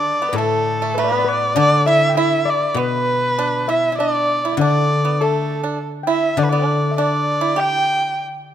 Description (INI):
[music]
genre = chinese traditional, Chinese chamber ensemble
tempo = 100 BPM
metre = 2/4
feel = rubato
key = unclear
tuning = A4 = 440 Hz
[part]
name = warm erhu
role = melody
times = 0.0-8.2 s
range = A4 to G5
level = -18 LUFS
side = equal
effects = none
[part]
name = pipa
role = second line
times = 0.0-8.1 s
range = A3 to G4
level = -23 LUFS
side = right 7 dB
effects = none
[part]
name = steel pan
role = second line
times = 0.0-8.2 s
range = A4 to G5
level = -26 LUFS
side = left 7 dB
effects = none
[part]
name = guzheng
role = accompaniment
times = 0.0-8.2 s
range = A2 to D3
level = -22 LUFS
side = left 3 dB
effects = none
[sound]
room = moderate concert hall reverb, RT60 2.3 s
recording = close, detailed microphones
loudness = -16 LUFS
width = side -10 dB against mid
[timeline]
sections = 0.0-8.5 A section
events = none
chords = none